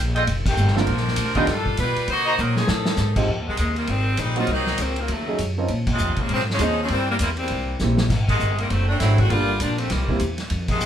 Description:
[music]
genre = jazz, big band swing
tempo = 199 BPM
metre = 4/4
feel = swing 61% on 8ths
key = F minor from 3.3 s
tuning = A4 = 440 Hz
[part]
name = upright bass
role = bass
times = 0.0-10.9 s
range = F1 to C3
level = -23 LUFS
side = equal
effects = none
[part]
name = warm trumpet section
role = stabs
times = 0.2-2.3 s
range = F4 to Bb5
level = -24 LUFS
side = equal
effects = none
[part]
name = vintage drum kit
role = drums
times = 0.2-10.9 s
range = crash cymbal, hi-hat, kick drum, ride cymbal, snare drum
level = -27 LUFS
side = equal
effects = none
[part]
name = edgy saxophone section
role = melody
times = 0.5-10.9 s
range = C3 to C5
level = -24 LUFS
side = left 1 dB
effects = none
[part]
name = warm grand piano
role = accompaniment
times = 0.8-10.2 s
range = D3 to Bb4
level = -26 LUFS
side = right 3 dB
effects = none
[sound]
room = moderate studio reverb, RT60 0.7 s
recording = band playing live in one room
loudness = -19 LUFS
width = side -10 dB against mid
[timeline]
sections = 0.0-3.3 A section; 3.3-10.9 B section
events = band accent 0.4, 5.8, 8.2, 10.7; drum fill 2.4-3.0, 7.8-8.1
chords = 0.3 F9; 0.9 Bbadd9; 1.5 G7; 2.1 Cm7b5; 2.7 F7alt; 3.3 Fm9 (rootless); 4.5 Cm7b5; 5.1 Ebm9b5; 5.7 Bbm11; 6.9 C7; 8.1 Abmaj7; 8.7 D7; 9.3 Gm7; 9.9 C7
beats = 0.28 0.58 | 0.88 1.18 1.48 1.78 | 2.08 2.38 2.68 2.98 | 3.28 3.58 3.88 4.18 | 4.49 4.79 5.09 5.39 | 5.69 5.99 6.29 6.59 | 6.89 7.19 7.50 7.80 | 8.10 8.40 8.70 9.00 | 9.30 9.60 9.90 10.20 | 10.51 10.81

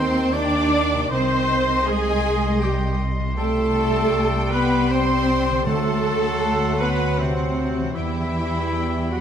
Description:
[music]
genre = classical, slow romantic movement for symphony orchestra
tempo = 78 BPM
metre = 3/4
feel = rubato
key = unclear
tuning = A4 = 440 Hz
[part]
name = rich studio violin section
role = melody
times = 0.0-9.2 s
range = Eb5 to G5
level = -34 LUFS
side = left 1 dB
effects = none
[part]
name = clear clarinet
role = second line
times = 0.0-9.2 s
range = G5 to C6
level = -34 LUFS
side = equal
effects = none
[part]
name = mellow flute section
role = second line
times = 0.0-9.2 s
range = C5 to D6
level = -30 LUFS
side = left 2 dB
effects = none
[part]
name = mellow oboe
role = second line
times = 0.0-9.2 s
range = C4 to D5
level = -32 LUFS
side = equal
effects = none
[part]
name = rich studio violin section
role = second line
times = 0.0-9.2 s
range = C5 to D6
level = -34 LUFS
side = equal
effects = none
[part]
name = clear bassoon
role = accompaniment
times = 0.0-9.2 s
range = Eb3 to G3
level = -31 LUFS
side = right 2 dB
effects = none
[part]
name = warm studio viola section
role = accompaniment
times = 0.0-9.2 s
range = C4 to D5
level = -26 LUFS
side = right 1 dB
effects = none
[part]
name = mellow French horn section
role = sustained chords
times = 0.0-9.2 s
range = C3 to D4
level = -29 LUFS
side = left 5 dB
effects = none
[part]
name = concert harp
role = arpeggios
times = 0.0-9.2 s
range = C3 to G4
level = -34 LUFS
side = left 10 dB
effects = none
[part]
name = warm trumpet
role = stabs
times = 0.0-9.2 s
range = C4 to D5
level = -31 LUFS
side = right 1 dB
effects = none
[part]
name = warm studio cello section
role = bass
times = 0.0-9.2 s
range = C3 to D4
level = -26 LUFS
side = right 2 dB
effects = none
[part]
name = warm studio double bass section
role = bass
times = 0.0-9.2 s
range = C2 to E2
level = -25 LUFS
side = right 1 dB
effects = none
[part]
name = timpani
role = percussion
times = 5.7-6.8 s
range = D3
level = -31 LUFS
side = right 5 dB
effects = none
[sound]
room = moderate scoring stage reverb, RT60 1.5 s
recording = none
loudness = -18 LUFS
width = side -8 dB against mid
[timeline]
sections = 0.0-9.2 A section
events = none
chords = 0.0 Eb; 1.1 Cm; 3.4 Am7/C; 5.7 D7; 8.0 Em7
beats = 0.33 | 1.11 1.86 2.61 | 3.37 4.13 4.90 | 5.67 6.44 7.19 | 7.96 8.73

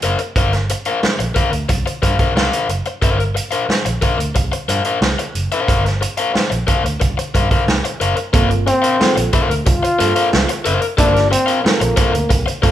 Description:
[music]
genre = funk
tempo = 90 BPM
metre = 4/4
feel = straight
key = G minor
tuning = A4 = 439 Hz
[part]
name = overdriven electric guitar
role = accompaniment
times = 0.0-12.7 s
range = Bb4 to F5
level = -19 LUFS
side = left 4 dB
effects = none
[part]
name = vintage muted fingered electric bass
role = bass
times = 0.0-12.7 s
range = F#1 to G2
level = -22 LUFS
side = right 1 dB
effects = none
[part]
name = vintage drum kit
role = drums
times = 0.0-12.7 s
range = hi-hat, kick drum, snare drum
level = -18 LUFS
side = right 1 dB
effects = none
[part]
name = mellow reed electric piano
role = stabs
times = 8.3-12.7 s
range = A3 to A4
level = -23 LUFS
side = right 5 dB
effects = phaser
[part]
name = mellow trombone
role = melody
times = 8.7-12.6 s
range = Bb3 to F4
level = -17 LUFS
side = left 1 dB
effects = none
[sound]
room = moderate large studio reverb, RT60 0.9 s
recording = band playing live in one room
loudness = -14 LUFS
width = side -11 dB against mid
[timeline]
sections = 0.0-8.3 A section; 8.3-12.7 B section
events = none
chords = 0.0 Gm7; 8.3 Gm11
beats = | 0.36 1.02 1.69 2.35 | 3.02 3.69 4.35 5.02 | 5.68 6.35 7.01 7.68 | 8.34 9.00 9.66 10.32 | 10.98 11.64 12.30

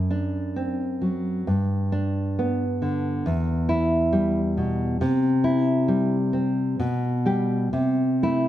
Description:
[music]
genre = romantic piece for solo classical guitar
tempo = 68 BPM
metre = 2/4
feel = uneven beats, rubato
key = G major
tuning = A4 = 440 Hz
[part]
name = nylon-string guitar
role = solo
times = 0.0-8.5 s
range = E2 to G4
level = -21 LUFS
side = equal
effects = none
[sound]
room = moderate recital hall reverb, RT60 1.5 s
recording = dark, warm production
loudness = -21 LUFS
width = side -12 dB against mid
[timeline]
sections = 0.0-8.5 A section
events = none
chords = 0.0 D7/F#; 1.5 G; 3.2 Em; 5.0 C; 6.8 G/B; 7.7 Am/C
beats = 0.56 | 1.48 2.38 | 3.24 4.12 | 5.00 5.89 | 6.80 7.73

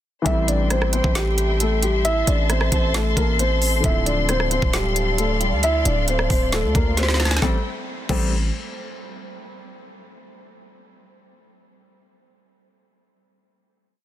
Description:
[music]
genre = hip hop, trap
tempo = 134 BPM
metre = 4/4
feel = half-time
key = A minor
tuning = A4 = 436 Hz
[part]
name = dark grand piano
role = accompaniment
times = 0.2-8.3 s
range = D3 to C4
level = -31 LUFS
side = left 4 dB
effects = low-pass filter
[part]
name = dark concert grand piano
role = melody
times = 0.3-8.3 s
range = G3 to E5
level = -24 LUFS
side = equal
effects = low-pass filter
[part]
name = dark studio string section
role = sustained chords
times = 0.3-7.6 s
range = C4 to C6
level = -27 LUFS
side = left 3 dB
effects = none
[part]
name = distorted 808-style bass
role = bass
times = 0.3-8.5 s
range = D1 to D2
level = -22 LUFS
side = equal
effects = distortion
[part]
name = trap drum kit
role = drums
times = 0.3-8.2 s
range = crash cymbal, hi-hat, kick drum, rim click, snare drum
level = -23 LUFS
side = equal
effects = none
[sound]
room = studio ambience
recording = dense, heavily limited modern master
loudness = -18 LUFS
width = side -12 dB against mid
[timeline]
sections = 0.3-7.4 hook; 7.4-9.2 final chord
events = drum fill 7.0-7.4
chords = 0.3 Am7; 3.8 Dm7; 7.4 Am7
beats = | 0.26 0.70 1.15 1.60 | 2.05 2.50 2.94 3.39 | 3.84 4.29 4.74 5.18 | 5.63 6.08 6.53 6.97 | 7.42 7.87 8.32

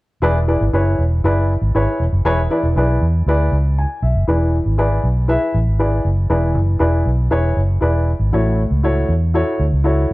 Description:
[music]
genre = uptempo 1960s-style soul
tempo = 118 BPM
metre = 4/4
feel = straight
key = unclear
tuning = A4 = 439 Hz
[part]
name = dark upright piano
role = accompaniment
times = 0.2-10.1 s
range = A2 to G#5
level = -19 LUFS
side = left 1 dB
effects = none
[part]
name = vintage muted fingered electric bass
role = bass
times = 0.2-10.1 s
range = E1 to E2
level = -16 LUFS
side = equal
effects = none
[sound]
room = light reverb, studio reverb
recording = none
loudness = -14 LUFS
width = side -20 dB against mid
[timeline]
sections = 0.2-4.3 A section; 4.3-10.1 B section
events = none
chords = 0.2 E7; 8.3 A6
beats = | 0.23 0.73 1.24 1.74 | 2.25 2.76 3.26 3.77 | 4.28 4.78 5.29 5.79 | 6.30 6.81 7.31 7.82 | 8.33 8.83 9.34 9.85

